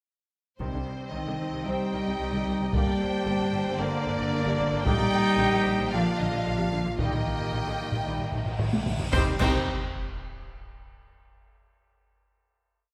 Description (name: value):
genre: cinematic, epic orchestral film score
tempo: 112 BPM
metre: 4/4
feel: straight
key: C minor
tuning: A4 = 440 Hz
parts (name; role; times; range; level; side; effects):
- rich studio violin section; melody; 0.6-9.7 s; C5 to G5; -36 LUFS; equal; none
- rich symphonic viola section; accompaniment; 0.6-9.7 s; C3 to G4; -38 LUFS; equal; none
- bright trombone section; sustained chords; 0.6-9.3 s; D3 to C4; -42 LUFS; equal; none
- warm French horn section; sustained chords; 0.6-9.3 s; C4 to G4; -36 LUFS; equal; none
- dark trumpet; stabs; 0.6-9.6 s; G3 to C5; -36 LUFS; equal; none
- rich symphonic double bass section; bass; 0.6-9.7 s; G1 to C2; -36 LUFS; equal; none
- warm symphonic cello section; bass; 0.6-9.7 s; C3 to C4; -33 LUFS; equal; none
- taiko ensemble; drums; 0.6-10.4 s; none; -32 LUFS; equal; none
- rich symphonic violin section; second line; 1.7-9.7 s; Bb4 to G5; -40 LUFS; equal; none
- cymbal swell, concert snare drum, concert bass drum and clash cymbals; percussion; 4.9-10.4 s; none; -37 LUFS; equal; none
- cymbal swell and sub drop; sound effects; 8.4-11.3 s; none; -42 LUFS; equal; none
room: moderate scoring stage reverb, RT60 1.8 s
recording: none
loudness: -27 LUFS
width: mono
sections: 0.6-9.1 theme; 9.1-11.3 final chord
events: cymbal swell 8.4-9.1; drum fill 8.6-9.1; band accent 9.1-9.7; impact 9.1-11.3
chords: 0.6 Cm; 2.7 Gm; 4.9 Bb; 7.0 Eb/Bb; 9.1 Cm